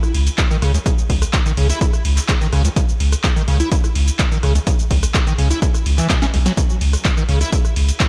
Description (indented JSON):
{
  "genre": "acid house",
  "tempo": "126 BPM",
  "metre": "4/4",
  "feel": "straight",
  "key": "C# minor",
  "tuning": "A4 = 440 Hz",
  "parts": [
    { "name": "electro analog drum machine", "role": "drums", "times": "0.0-8.1 s", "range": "handclaps, hi-hat, ride cymbal, rim click, shaker, snare drum", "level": "-26 LUFS", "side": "equal", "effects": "none" },
    { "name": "warm sub bass", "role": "bass", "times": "0.1-7.9 s", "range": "B1 to C#2", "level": "-18 LUFS", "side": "equal", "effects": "sidechain pumping" },
    { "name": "liquid acid bass", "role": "riff", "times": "0.4-8.0 s", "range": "C#2 to E4", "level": "-26 LUFS", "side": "equal", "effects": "analog chorus, sidechain pumping, diffuse ambient delay" },
    { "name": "electronic kick drum", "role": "drums", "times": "0.4-8.1 s", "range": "none", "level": "-20 LUFS", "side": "equal", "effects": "none" }
  ],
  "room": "digital ambience",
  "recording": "none",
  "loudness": "-17 LUFS",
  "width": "mono",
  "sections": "0.0-8.1 A section",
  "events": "drum fill 6.1-6.6",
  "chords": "none",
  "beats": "0.38 | 0.86 1.34 1.81 2.29 | 2.76 3.24 3.72 4.19 | 4.67 5.14 5.62 6.10 | 6.57 7.05 7.53 8.00"
}